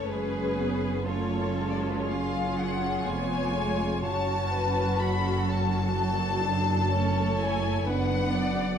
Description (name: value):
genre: classical, slow romantic movement for string orchestra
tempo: 59-63 BPM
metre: 4/4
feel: rubato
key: F# minor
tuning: A4 = 444 Hz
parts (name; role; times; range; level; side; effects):
- rich studio violin section; melody; 0.0-8.8 s; B4 to B5; -31 LUFS; left 5 dB; none
- rich studio violin section; second line; 0.0-8.8 s; E#4 to D5; -32 LUFS; left 2 dB; none
- rich studio viola section; accompaniment; 0.0-8.8 s; F#3 to F#4; -32 LUFS; right 2 dB; none
- rich studio cello section; bass; 0.0-8.8 s; E#2 to F#2; -32 LUFS; right 3 dB; none
- rich studio double bass section; bass; 0.0-8.8 s; E#1 to F#1; -31 LUFS; right 2 dB; none
room: moderate scoring stage reverb, RT60 1.8 s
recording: dark, warm production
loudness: -25 LUFS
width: side -8 dB against mid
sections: 0.0-8.8 A section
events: none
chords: 0.1 C#7/F#; 4.0 F#m; 7.9 G#m7b5/F# (rootless)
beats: | 0.09 1.08 2.09 3.08 | 4.04 5.00 5.96 6.91 | 7.87